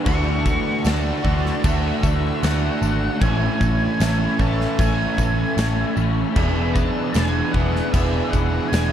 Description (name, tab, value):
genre	rock, shoegaze and dream pop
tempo	76 BPM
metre	4/4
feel	straight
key	unclear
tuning	A4 = 444 Hz
part	lush unison pad	sustained chords	0.0-8.9 s	A4 to E6	-34 LUFS	equal	chorus, phaser
part	electric guitar through a small old amp	arpeggios	0.0-8.9 s	E3 to D4	-33 LUFS	left 2 dB	wide subtle chorus, slapback echo
part	crunchy overdriven guitar	riff	0.0-8.9 s	A2 to A4	-26 LUFS	left 10 dB	analog chorus
part	overdriven electric guitar	riff	0.0-8.9 s	A2 to G#4	-25 LUFS	right 11 dB	reverse reverb
part	octave-fuzz lead guitar	melody	0.1-8.9 s	E5 to C#6	-29 LUFS	equal	distortion, slapback echo
part	vintage muted picked electric bass	bass	0.1-8.9 s	E1 to D2	-22 LUFS	equal	none
part	big rock drum kit	drums	0.1-8.9 s	crash cymbal, kick drum, snare drum	-24 LUFS	equal	none
part	tambourine	percussion	0.1-8.9 s	none	-40 LUFS	right 14 dB	none
room	studio reverb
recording	dark, warm production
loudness	-18 LUFS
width	side -10 dB against mid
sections	0.0-8.9 A section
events	none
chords	0.1 Dmaj9; 3.2 Amaj7; 6.4 E7